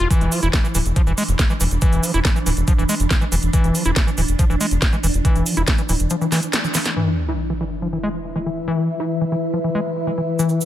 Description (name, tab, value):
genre	psychedelic trance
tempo	140 BPM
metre	4/4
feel	straight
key	unclear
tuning	A4 = 440 Hz
part	swarming drone	sustained chords	0.0-10.7 s	E3 to E4	-26 LUFS	equal	built-in reverb, sidechain pumping
part	overdriven acid bass	riff	0.0-10.7 s	E3 to E4	-23 LUFS	left 1 dB	auto-pan, sidechain pumping, digital delay
part	round analog bass	bass	0.0-6.1 s	D1 to E1	-20 LUFS	equal	none
part	garage drum kit	drums	0.0-6.9 s	hi-hat, snare drum	-24 LUFS	equal	low-pass filter on hats, low-pass filter on cymbals, low-pass filter on snare
part	electronic kick drum	drums	0.1-5.8 s	none	-17 LUFS	equal	none
part	cabasa	percussion	0.1-6.9, 10.4-10.7 s	none	-29 LUFS	right 4 dB	none
part	sub drop	sound effects	7.0-8.7 s	none	-26 LUFS	equal	none
part	warbly tape-like pad	texture	8.2-10.7 s	E4 to E5	-27 LUFS	left 1 dB	chorus, built-in reverb, sidechain pumping
room	light reverb, digital ambience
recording	none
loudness	-17 LUFS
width	side -12 dB against mid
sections	0.0-7.0 A section; 7.0-10.7 B section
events	band accent 6.5; drum fill 6.7; impact 7.0-8.7; filter sweep on acid bass 7.0-10.7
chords	0.0 Dsus2; 7.0 E5